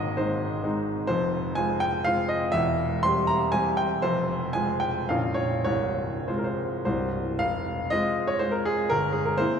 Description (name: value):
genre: classical, romantic triple-time dance for piano with dotted rhythms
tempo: 94-135 BPM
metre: 3/4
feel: rubato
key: F minor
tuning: A4 = 440 Hz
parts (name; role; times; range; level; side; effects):
- warm baby grand piano; solo; 0.0-9.6 s; Bb0 to C6; -23 LUFS; equal; none
room: wet cathedral reverb, RT60 6.1 s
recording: recorded in a church or concert hall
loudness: -24 LUFS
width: side -7 dB against mid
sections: 0.0-7.4 A section; 7.4-9.6 B section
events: none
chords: 0.0 Ab; 1.1 Fm; 2.5 C/E; 4.0 Fm; 5.1 Bbm; 5.7 Fm/C; 6.9 C; 7.4 Fm; 8.9 C7/G